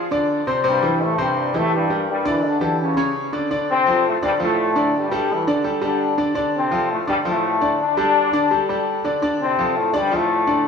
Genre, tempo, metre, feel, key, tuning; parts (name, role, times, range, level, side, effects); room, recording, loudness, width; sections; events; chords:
latin; 168 BPM; 4/4; straight; D minor; A4 = 439 Hz
clear trombone section; melody; 0.0-10.7 s; G2 to E4; -20 LUFS; left 3 dB
bright grand piano; accompaniment; 0.0-10.7 s; C3 to D5; -21 LUFS; equal
wet plate reverb, RT60 2.3 s; dreamy mix soaked in reverb; -17 LUFS; side -6 dB against mid
0.0-3.5 A section; 3.5-10.7 B section
0.0 F5; 0.7 Am7; 2.1 Em7b5; 2.8 C#dim; 3.5 Dm7; 4.9 Gsus2; 6.4 Dm7; 7.8 Gsus2; 9.2 Dm7